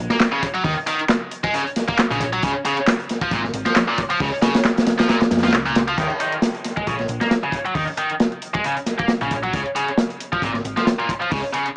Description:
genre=breakbeat, breaks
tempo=135 BPM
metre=4/4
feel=swing 55% on 16ths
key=Eb minor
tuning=A4 = 440 Hz
part: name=hollow-body short-scale picked electric bass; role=bass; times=0.0-11.4 s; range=Ab1 to F2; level=-28 LUFS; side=equal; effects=none
part: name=heavy high-gain guitar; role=riff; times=0.1-11.7 s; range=Bb2 to Bb3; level=-21 LUFS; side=equal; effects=distortion, tube saturation, low-pass filter, tape echo
part: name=crunchy breakbeat drum kit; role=drums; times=0.1-11.7 s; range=crash cymbal, hi-hat, kick drum, snare drum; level=-20 LUFS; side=equal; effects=none
part: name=house drum kit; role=drums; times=0.1-11.7 s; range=handclaps, hi-hat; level=-25 LUFS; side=equal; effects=none
room=studio ambience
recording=dry, gritty hardware recording, small speaker sound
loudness=-18 LUFS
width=side -29 dB against mid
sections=0.0-6.0 A section; 6.0-11.8 B section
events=drop 0.0-6.0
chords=0.0 Ebm; 2.4 Db; 6.0 Eb5; 9.5 Db

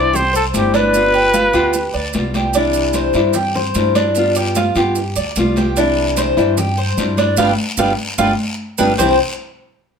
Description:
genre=latin, Cuban son and guajira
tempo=149 BPM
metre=4/4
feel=straight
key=C major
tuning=A4 = 440 Hz
part: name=breathy trumpet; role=melody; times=0.0-2.2 s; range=G4 to D5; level=-15 LUFS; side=equal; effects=none
part: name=nylon-string guitar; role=accompaniment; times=0.0-9.2 s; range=C3 to F4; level=-20 LUFS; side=left 2 dB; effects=none
part: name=Cuban tres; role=arpeggios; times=0.0-9.2 s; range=C4 to D5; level=-17 LUFS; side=right 1 dB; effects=none
part: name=upright bass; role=bass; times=0.0-9.2 s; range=G1 to G2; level=-22 LUFS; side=equal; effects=none
part: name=congas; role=percussion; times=0.1-9.1 s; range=none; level=-23 LUFS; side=left 1 dB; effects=none
part: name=guiro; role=percussion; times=0.1-9.1 s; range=none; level=-28 LUFS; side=left 2 dB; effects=none
part: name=maracas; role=percussion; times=0.2-9.1 s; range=none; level=-26 LUFS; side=right 8 dB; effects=none
room=moderate studio reverb, RT60 0.8 s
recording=none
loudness=-13 LUFS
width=side -6 dB against mid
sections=0.0-2.5 A section; 2.5-9.0 B section; 9.0-10.0 C section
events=band accent 7.4-9.0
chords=0.0 Cadd9; 0.9 G7; 2.5 Cadd9; 4.2 G7; 5.8 Cadd9; 7.4 G7; 9.0 Cadd9

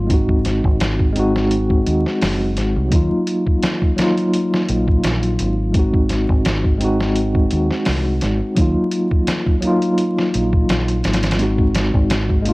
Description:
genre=trip hop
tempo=85 BPM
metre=4/4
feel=swing 54% on 16ths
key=unclear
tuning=A4 = 440 Hz
part: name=mellow tine electric piano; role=accompaniment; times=0.0-12.5 s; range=Gb3 to Gb4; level=-18 LUFS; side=equal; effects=slow stereo tremolo, cassette tape, tape echo
part: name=deep dub fingered electric bass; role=bass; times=0.0-12.5 s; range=Gb1 to Eb2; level=-20 LUFS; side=equal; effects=none
part: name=trip hop sampler-style drum kit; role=drums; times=0.1-12.5 s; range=hi-hat, kick drum, snare drum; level=-19 LUFS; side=equal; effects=cassette tape
room=digital ambience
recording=home recording on cassette, vinyl crackle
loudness=-15 LUFS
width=side -22 dB against mid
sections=0.0-12.5 A section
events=none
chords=0.1 Ab7; 2.9 Ebmadd9; 5.8 Ab7; 8.6 Ebmadd9; 11.4 Ab7

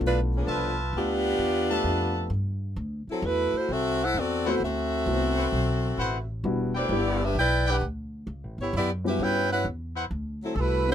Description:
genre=jazz, big band swing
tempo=131 BPM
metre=4/4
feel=swing 67% on 8ths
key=D mixolydian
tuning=A4 = 440 Hz
part: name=warm grand piano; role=accompaniment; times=0.0-10.9 s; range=G3 to E5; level=-30 LUFS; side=left 3 dB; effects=none
part: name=upright bass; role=bass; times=0.0-10.9 s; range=E1 to G2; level=-29 LUFS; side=equal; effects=none
part: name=warm saxophone section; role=melody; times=0.1-10.9 s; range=F3 to G5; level=-26 LUFS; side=equal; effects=none
part: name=clear trumpet section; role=stabs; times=0.5-10.1 s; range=E4 to A5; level=-30 LUFS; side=left 1 dB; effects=none
room=light reverb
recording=close, detailed microphones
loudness=-24 LUFS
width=side -9 dB against mid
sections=0.0-10.9 A section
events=none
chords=0.0 G13; 2.8 D13; 6.4 Em7; 8.3 A13 (rootless); 10.1 D13

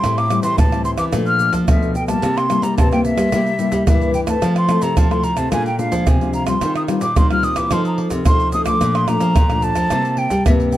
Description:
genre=samba and choro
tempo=109 BPM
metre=4/4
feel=straight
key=F major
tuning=A4 = 440 Hz
part: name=breathy mellow silver concert flute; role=melody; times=0.0-10.8 s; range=E5 to F6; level=-20 LUFS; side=equal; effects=analog delay
part: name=nylon-string guitar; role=accompaniment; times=0.0-10.8 s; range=F2 to A4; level=-21 LUFS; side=left 2 dB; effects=none
part: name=nylon-string guitar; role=bass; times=0.0-10.8 s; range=A2 to G3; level=-22 LUFS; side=equal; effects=none
part: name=egg shaker, surdo, pandeiro and tamborim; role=percussion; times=0.0-10.8 s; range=none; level=-19 LUFS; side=right 1 dB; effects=none
room=moderate studio reverb, RT60 0.6 s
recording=dark, warm production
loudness=-15 LUFS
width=side -14 dB against mid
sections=0.0-10.8 A section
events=none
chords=0.0 Am7; 1.1 Bbmaj7; 2.2 C7; 4.4 Fmaj7; 5.5 Bb7; 6.6 Eb69; 7.7 F7; 8.8 Bbmaj7; 9.9 C7

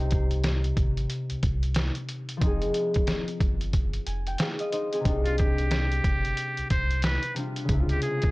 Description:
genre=hip hop, boom-bap hip-hop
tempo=91 BPM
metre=4/4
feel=swing 62% on 16ths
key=C minor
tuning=A4 = 439 Hz
part: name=concert harp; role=accompaniment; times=0.0-8.3 s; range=C3 to Ab5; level=-29 LUFS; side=left 1 dB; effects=high-pass filter, low-pass filter
part: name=soft dub sub bass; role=bass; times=0.0-8.0 s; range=F1 to Db2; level=-28 LUFS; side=equal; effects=none
part: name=trip hop sampler-style drum kit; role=drums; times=0.1-8.3 s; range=hi-hat, kick drum, snare drum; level=-27 LUFS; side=equal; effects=vintage 12-bit sampler grit
part: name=trumpet with metal mute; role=melody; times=5.3-8.3 s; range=F4 to C5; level=-31 LUFS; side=right 1 dB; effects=high-pass filter, low-pass filter, analog delay
room=small room ambience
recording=dry, gritty hardware recording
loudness=-24 LUFS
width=side -22 dB against mid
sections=0.0-8.3 A section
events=none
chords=0.0 Abmaj7; 2.4 Fm7; 5.1 Cmadd9; 7.7 Dbmaj7

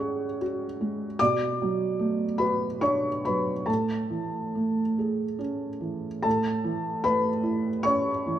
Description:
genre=neoclassical minimalist piano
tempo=68-76 BPM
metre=3/4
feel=rubato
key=A major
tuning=A4 = 445 Hz
part: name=felt-muted upright piano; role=solo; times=0.0-8.4 s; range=A2 to F#6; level=-25 LUFS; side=right 1 dB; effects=none
room=moderate recital hall reverb, RT60 1.3 s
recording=minimal, uncompressed stereo recording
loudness=-24 LUFS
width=side -11 dB against mid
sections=0.0-6.3 A section; 6.3-8.4 B section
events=none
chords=0.0 C#sus4; 1.2 Bm7; 3.7 Amaj7; 6.3 A

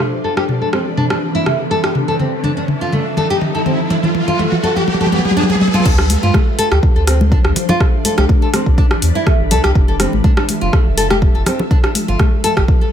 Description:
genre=afro house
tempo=123 BPM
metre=4/4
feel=straight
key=D dorian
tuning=A4 = 440 Hz
part: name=ethereal airy pad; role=sustained chords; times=0.0-12.9 s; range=E3 to E5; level=-22 LUFS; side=equal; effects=ensemble chorus, built-in reverb, phaser, sidechain pumping
part: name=nylon-string guitar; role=arpeggios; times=0.0-12.9 s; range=A3 to A4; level=-19 LUFS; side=equal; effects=sidechain pumping, low-pass filter, ping-pong delay
part: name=afro-pop drum kit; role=drums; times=0.0-12.7 s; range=crash cymbal, hi-hat, rim click, toms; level=-19 LUFS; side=equal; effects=studio reverb
part: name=riser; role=sound effects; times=0.5-5.9 s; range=none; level=-23 LUFS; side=equal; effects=none
part: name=warm sub bass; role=bass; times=5.9-12.6 s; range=F1 to G2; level=-16 LUFS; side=equal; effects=sidechain pumping
part: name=electronic kick drum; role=drums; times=5.9-12.8 s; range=none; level=-13 LUFS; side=equal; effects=overdrive, studio reverb
part: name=congas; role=percussion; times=6.1-12.5 s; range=none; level=-21 LUFS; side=left 2 dB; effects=none
room=moderate recital hall reverb, RT60 1.5 s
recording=none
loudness=-12 LUFS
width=side -9 dB against mid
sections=0.0-5.9 A section; 5.9-12.9 B section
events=build-up 0.0-5.9; drum fill 0.0-5.9; riser 0.5-5.9; drop 5.9-12.9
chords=0.0 Cmaj9; 2.0 Fmaj7; 3.9 G7; 5.9 Dm7; 7.8 Cmaj9; 9.8 Fmaj7; 11.7 G7

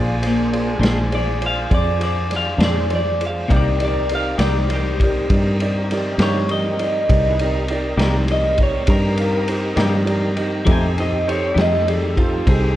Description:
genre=slow blues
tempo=67 BPM (dotted quarters)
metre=12/8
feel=straight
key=unclear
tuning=A4 = 441 Hz
part: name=electric guitar through a small old amp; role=melody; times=0.0-12.8 s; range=Bb3 to Ab5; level=-23 LUFS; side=equal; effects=phaser
part: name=warm concert grand piano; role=accompaniment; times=0.0-12.7 s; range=Eb4 to F5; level=-26 LUFS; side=right 2 dB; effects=none
part: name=tonewheel organ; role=sustained chords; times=0.0-12.8 s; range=C4 to C5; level=-30 LUFS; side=equal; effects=slow rotary speaker, overdrive, chorus vibrato
part: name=warm horn section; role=sustained chords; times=0.0-12.8 s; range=A4 to Bb5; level=-34 LUFS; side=equal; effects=none
part: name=fingered electric bass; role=bass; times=0.0-12.8 s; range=Bb1 to G2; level=-21 LUFS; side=equal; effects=none
part: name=raw garage drum kit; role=drums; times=0.2-12.6 s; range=kick drum, ride cymbal, snare drum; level=-22 LUFS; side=equal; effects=none
part: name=clean electric guitar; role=accompaniment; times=0.8-11.7 s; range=Bb2 to G4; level=-24 LUFS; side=left 2 dB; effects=harmonic tremolo
room=light reverb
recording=worn, warbling old tape, cassette tape, warbly pitch drift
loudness=-16 LUFS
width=side -13 dB against mid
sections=0.0-12.8 A section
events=clean electric guitar solo 0.0-12.8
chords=0.0 Bb9; 3.5 Cm7; 10.7 F9

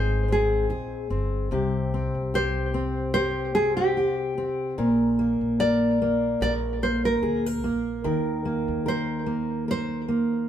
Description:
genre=acoustic pop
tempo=74 BPM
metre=4/4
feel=swing 55% on 16ths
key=C minor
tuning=A4 = 441 Hz
part: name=nylon-string guitar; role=melody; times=0.0-10.5 s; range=G4 to D5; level=-26 LUFS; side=equal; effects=tape echo
part: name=fingerpicked steel-string acoustic guitar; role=accompaniment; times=0.0-10.5 s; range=Bb2 to Bb4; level=-25 LUFS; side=equal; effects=none
part: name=upright bass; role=bass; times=0.0-10.5 s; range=G1 to Eb2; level=-31 LUFS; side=equal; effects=none
room=moderate studio reverb, RT60 0.8 s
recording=heard from further back in the room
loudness=-22 LUFS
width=side -10 dB against mid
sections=0.0-10.5 A section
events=none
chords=0.0 Ab; 1.5 C5; 4.8 Bb; 8.0 Eb5

